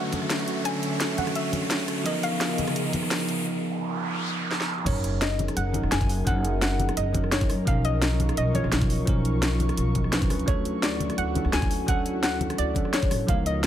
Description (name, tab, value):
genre	liquid drum and bass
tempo	171 BPM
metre	4/4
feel	straight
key	F# major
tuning	A4 = 439 Hz
part	soft round pluck	melody	0.0-2.7, 4.9-13.7 s	C#5 to G#5	-31 LUFS	equal	chorus, dub echo
part	bell-like tine electric piano	accompaniment	0.0-13.7 s	E#3 to B4	-30 LUFS	right 1 dB	digital delay
part	airy breathy pad	sustained chords	0.0-13.7 s	C#3 to C#6	-34 LUFS	left 1 dB	chorus, vintage 12-bit sampler grit, sidechain pumping
part	riser and noise sweep	sound effects	0.0-4.9 s	none	-32 LUFS	right 2 dB	none
part	drum and bass drum kit	drums	0.1-13.7 s	crash cymbal, hi-hat, rim click, snare drum, toms	-29 LUFS	equal	overdrive, high-pass filter on hats, high-pass filter on snare, high-pass filter on toms, high-pass filter on cymbals, high-pass filter on room
part	electronic kick drum	drums	0.1-13.4 s	none	-26 LUFS	equal	overdrive, high-pass filter on kick, high-pass filter on room
part	congas	percussion	0.1-3.0, 5.4-12.8 s	none	-34 LUFS	left 3 dB	none
part	upright bass	bass	4.9-13.7 s	F#1 to F#2	-27 LUFS	equal	none
room	light reverb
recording	none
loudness	-23 LUFS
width	side -11 dB against mid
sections	0.0-4.9 A section; 4.9-13.7 B section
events	build-up 0.0-4.9; riser 0.0-3.5; break 3.5-4.9; noise sweep 3.5-4.9; drum fill 4.5-4.9; drop 4.9-13.7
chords	0.0 Dmaj7; 2.1 C#13; 4.9 F#6; 7.7 Bmaj9#11; 10.3 Dmaj7